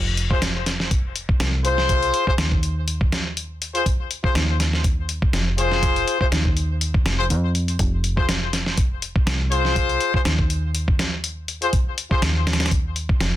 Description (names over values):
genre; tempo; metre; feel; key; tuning
breakbeat, breaks; 122 BPM; 4/4; swing 54% on 16ths; F minor pentatonic; A4 = 440 Hz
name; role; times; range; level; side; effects
deep dub fingered electric bass; bass; 0.0-13.4 s; F1 to F2; -24 LUFS; equal; tube saturation
dusty soul sampler-style drum kit; drums; 0.2-13.3 s; hi-hat, kick drum, snare drum; -21 LUFS; equal; none
clear horn section; stabs; 0.3-12.2 s; F4 to C5; -24 LUFS; left 3 dB; ping-pong delay
room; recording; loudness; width
little or no reverb; dense, heavily limited modern master; -19 LUFS; side -13 dB against mid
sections
0.0-13.4 A section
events
none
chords
0.0 Fm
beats
0.42 0.91 1.40 | 1.89 2.39 2.88 3.37 | 3.86 4.35 4.84 5.34 | 5.83 6.32 6.81 7.30 | 7.80 8.29 8.78 9.27 | 9.76 10.26 10.75 11.24 | 11.73 12.22 12.71 13.21